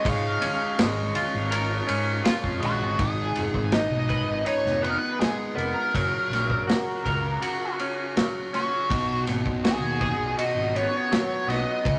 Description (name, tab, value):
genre	psychedelic rock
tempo	81 BPM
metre	4/4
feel	straight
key	G# dorian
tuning	A4 = 440 Hz
part	smooth overdriven lead guitar	melody	0.0-12.0 s	F#4 to E#5	-30 LUFS	equal	wah
part	mellow woodwind section	sustained chords	0.0-12.0 s	C#3 to C#6	-40 LUFS	equal	none
part	clean electric guitar	riff	0.0-12.0 s	G#2 to B4	-31 LUFS	equal	rotary speaker
part	fuzz fingered electric bass	bass	0.0-12.0 s	E#1 to G#2	-32 LUFS	equal	overdrive
part	vintage drum kit	drums	0.1-12.0 s	kick drum, ride cymbal, snare drum	-30 LUFS	equal	none
part	congas	percussion	0.4-3.0 s	none	-44 LUFS	equal	none
room	moderate studio reverb, RT60 0.5 s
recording	none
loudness	-25 LUFS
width	mono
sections	0.0-3.0 A section; 3.0-12.0 B section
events	drum fill 2.3-3.0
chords	0.0 A#m7/G#; 3.0 G#m; 6.0 F#; 8.9 B6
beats	| 0.06 0.80 1.53 2.27 | 3.00 3.74 4.48 5.21 | 5.95 6.69 7.43 8.16 | 8.90 9.64 10.38 11.11 | 11.85